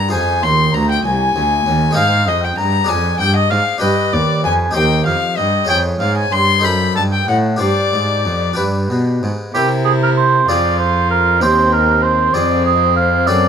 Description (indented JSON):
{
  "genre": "classical, baroque-style sonata movement with continuo",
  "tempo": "64 BPM (dotted quarters)",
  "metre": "6/8",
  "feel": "straight",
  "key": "C minor",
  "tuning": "A4 = 440 Hz",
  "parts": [
    { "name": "warm violin", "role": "melody", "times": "0.0-13.5 s", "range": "C4 to C6", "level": "-18 LUFS", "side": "left 7 dB", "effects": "none" },
    { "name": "warm oboe", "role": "second line", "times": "0.0-13.5 s", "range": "G4 to C6", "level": "-17 LUFS", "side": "right 5 dB", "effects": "none" },
    { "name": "harpsichord", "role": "accompaniment", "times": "0.0-13.5 s", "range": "C2 to D5", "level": "-20 LUFS", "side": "equal", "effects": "none" },
    { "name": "warm cello", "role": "bass", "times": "0.0-13.5 s", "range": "C2 to C3", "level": "-19 LUFS", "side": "right 1 dB", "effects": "none" }
  ],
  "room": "light reverb",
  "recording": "none",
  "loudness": "-13 LUFS",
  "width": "side -7 dB against mid",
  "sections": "0.0-9.5 A section; 9.5-13.5 B section",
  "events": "none",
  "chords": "0.1 Fm; 2.0 Ab; 2.9 Ddim/F; 3.8 G; 4.8 Cm/Eb; 5.7 Db/F; 6.6 F#dim7; 7.6 Gsus4; 8.6 G; 9.5 C7; 10.5 Fm; 11.4 Cm/Eb; 12.3 Fm",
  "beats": "| 0.13 1.05 | 1.97 2.89 | 3.82 4.75 | 5.69 6.64 | 7.61 8.58 | 9.54 10.48 | 11.41 12.34 | 13.27"
}